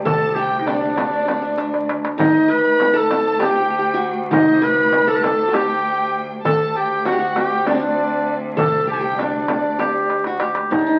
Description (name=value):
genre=Turkish makam ensemble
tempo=197 BPM (eighths)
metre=7/8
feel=straight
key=D makam hicaz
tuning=A4 = 442 Hz
part: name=qanun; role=second line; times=0.0-11.0 s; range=C4 to C5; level=-25 LUFS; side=equal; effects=none
part: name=bright cello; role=drone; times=0.0-11.0 s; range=D2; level=-32 LUFS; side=equal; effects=none
part: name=clear clarinet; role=melody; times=0.1-11.0 s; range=C4 to B4-40c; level=-21 LUFS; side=equal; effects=none
part: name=warm studio violin section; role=second line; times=0.1-10.1 s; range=D5 to B5-40c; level=-27 LUFS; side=equal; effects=none
part: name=upright bass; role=bass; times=0.1-11.0 s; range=C2 to D2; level=-39 LUFS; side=equal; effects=none
part: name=darbuka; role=percussion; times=0.1-10.7 s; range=none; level=-30 LUFS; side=equal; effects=none
part: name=frame drum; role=percussion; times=0.1-10.9 s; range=none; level=-29 LUFS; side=equal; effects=none
room=wet large studio reverb, RT60 0.8 s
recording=very old 78 rpm record, vinyl crackle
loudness=-18 LUFS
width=mono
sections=0.0-10.7 A section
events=drum fill 1.6-2.2, 10.1-10.7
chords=none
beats=| 0.07 0.37 0.68 0.98 1.28 1.59 1.89 | 2.20 2.50 2.81 3.11 3.42 3.72 4.02 | 4.33 4.63 4.94 5.24 5.54 5.85 6.15 | 6.46 6.76 7.07 7.37 7.67 7.98 8.28 | 8.59 8.89 9.20 9.50 9.81 10.11 10.42 | 10.72